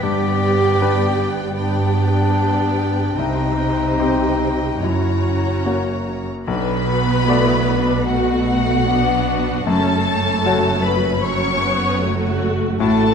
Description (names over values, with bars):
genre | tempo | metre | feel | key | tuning
cinematic, emotional film score for orchestra | 76 BPM | 4/4 | rubato | B minor from 6.5 s | A4 = 441 Hz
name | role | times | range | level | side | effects
warm clarinet | second line | 0.0-5.6 s | D4 to G4 | -21 LUFS | left 2 dB | none
warm studio violin section | second line | 0.0-13.1 s | F#4 to A#5 | -25 LUFS | left 4 dB | none
bright grand piano | accompaniment | 0.0-13.1 s | B1 to D5 | -24 LUFS | left 3 dB | none
warm studio viola section | accompaniment | 0.0-13.1 s | F#3 to G4 | -23 LUFS | right 1 dB | none
warm studio cello section | bass | 0.0-13.1 s | F#2 to C3 | -24 LUFS | right 2 dB | none
warm studio double bass section | bass | 0.0-13.1 s | F#1 to C2 | -23 LUFS | right 4 dB | none
rich studio violin section | melody | 6.5-13.1 s | F#5 to C#6 | -23 LUFS | left 4 dB | none
room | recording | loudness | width
moderate scoring stage reverb, RT60 1.5 s | dark, warm production, faint mains hum | -16 LUFS | side -6 dB against mid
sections
0.0-6.5 A section; 6.5-13.1 A section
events
none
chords
0.0 G; 3.2 Cm; 4.8 F#7; 6.5 Bm7; 9.7 F#m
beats
| 0.03 0.81 1.59 2.38 | 3.18 4.00 4.83 5.65 | 6.48 7.28 8.08 8.88 | 9.67 10.45 11.23 12.02 | 12.81